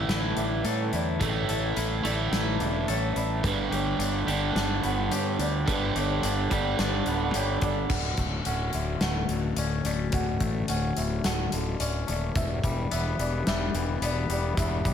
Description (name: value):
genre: post-rock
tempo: 108 BPM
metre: 4/4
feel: straight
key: D major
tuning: A4 = 440 Hz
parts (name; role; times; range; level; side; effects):
- hollow soft pad; sustained chords; 0.0-14.9 s; D3 to G4; -35 LUFS; left 5 dB; chorus
- felt-muted upright piano; arpeggios; 0.0-14.9 s; A4 to F#5; -36 LUFS; equal; analog delay
- twangy electric guitar; arpeggios; 0.0-14.9 s; D2 to A4; -35 LUFS; left 6 dB; analog delay
- raw garage guitar; riff; 0.0-7.9 s; G2 to A3; -28 LUFS; right 4 dB; overdrive
- fuzz fingered electric bass; bass; 0.0-14.9 s; D1 to A2; -30 LUFS; equal; overdrive
- big rock drum kit; drums; 0.1-14.9 s; crash cymbal, hi-hat, kick drum, snare drum; -31 LUFS; left 1 dB; none
room: light reverb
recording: none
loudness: -25 LUFS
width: side -8 dB against mid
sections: 0.0-7.9 A section; 7.9-14.9 B section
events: build-up 7.9-14.9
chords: 0.0 A7sus4; 3.4 Gmaj7; 7.9 Dmaj7; 12.4 Em7